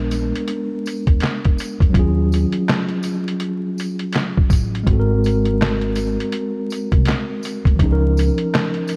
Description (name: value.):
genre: lo-fi hip hop.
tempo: 82 BPM.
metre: 4/4.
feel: swing 60% on 16ths.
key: Eb dorian.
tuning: A4 = 438 Hz.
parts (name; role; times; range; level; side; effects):
mellow tine electric piano; accompaniment; 0.0-9.0 s; F3 to Bb4; -24 LUFS; equal; low-pass filter.
upright bass; bass; 0.0-8.3 s; Ab1 to Fb2; -22 LUFS; equal; none.
lo-fi sampler-style drum kit; drums; 0.1-9.0 s; handclaps, hi-hat, kick drum, snare drum; -21 LUFS; equal; none.
tambourine; percussion; 0.1-9.0 s; none; -42 LUFS; equal; none.
room: light reverb, small room ambience.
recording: dark, warm production, vinyl crackle.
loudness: -19 LUFS.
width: mono.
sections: 0.0-9.0 A section.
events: none.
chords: 0.0 Bb7b9; 1.9 Ebm11; 4.9 Ab9; 7.8 Db69.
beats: 0.48 1.22 | 1.95 2.68 3.41 4.14 | 4.88 5.61 6.34 7.07 | 7.80 8.53.